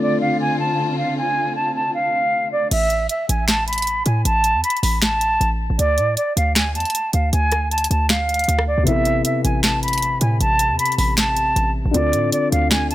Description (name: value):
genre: hip hop, trap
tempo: 156 BPM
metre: 4/4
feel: half-time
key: A harmonic minor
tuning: A4 = 440 Hz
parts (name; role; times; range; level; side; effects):
- silver concert flute; melody; 0.0-12.9 s; D5 to B5; -20 LUFS; right 1 dB; low-pass filter, ping-pong delay
- felt-muted upright piano; accompaniment; 0.0-2.7, 8.8-12.9 s; C3 to A4; -24 LUFS; left 3 dB; low-pass filter
- warm symphonic string section; sustained chords; 0.0-2.7 s; D3 to F4; -25 LUFS; left 1 dB; none
- short 808-style bass; bass; 2.7-12.9 s; A1 to A2; -21 LUFS; equal; none
- trap drum kit; drums; 2.7-12.9 s; crash cymbal, finger snaps, hi-hat, rim click, snare drum; -21 LUFS; equal; none
room: light reverb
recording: none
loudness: -16 LUFS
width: side -14 dB against mid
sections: 0.0-2.7 A section; 2.7-12.9 B section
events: none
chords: 0.0 Dm7; 2.7 Asus2; 5.8 Dm; 8.9 Amadd9; 11.9 Dm7